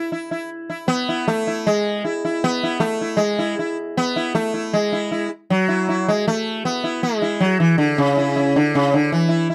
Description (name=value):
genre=indian classical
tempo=157 BPM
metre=4/4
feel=straight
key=E raga khamaj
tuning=A4 = 443 Hz
part: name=sitar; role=solo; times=0.0-9.5 s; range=C#3 to E4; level=-20 LUFS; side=equal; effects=none
room=light reverb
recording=dry, close 1970s-style studio recording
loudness=-20 LUFS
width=mono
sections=0.0-4.7 A section; 4.7-9.5 A section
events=none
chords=none